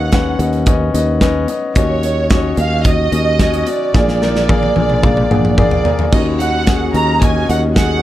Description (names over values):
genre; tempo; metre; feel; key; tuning
piano-driven pop; 110 BPM; 4/4; straight; Eb minor; A4 = 440 Hz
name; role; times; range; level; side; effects
dark studio violin section; melody; 0.0-8.0 s; Db5 to Bb5; -19 LUFS; right 4 dB; none
warm grand piano; accompaniment; 0.0-8.0 s; Bb2 to Bb5; -18 LUFS; left 4 dB; none
sustaining fretless electric bass; bass; 0.0-8.0 s; Bb1 to D#2; -18 LUFS; equal; none
modern studio drum kit; drums; 0.1-7.9 s; crash cymbal, hi-hat, kick drum, snare drum, toms; -16 LUFS; equal; none
muted studio string section; sustained chords; 6.1-8.0 s; Eb3 to Gb4; -28 LUFS; right 5 dB; none
room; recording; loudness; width
light reverb; none; -12 LUFS; side -14 dB against mid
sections
0.0-6.1 A section; 6.1-8.0 B section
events
drum fill 3.9-6.1; grand piano fill 4.5-6.1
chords
0.0 Badd9/D#; 1.8 Ebm7; 3.9 Bb7; 6.1 Ebm7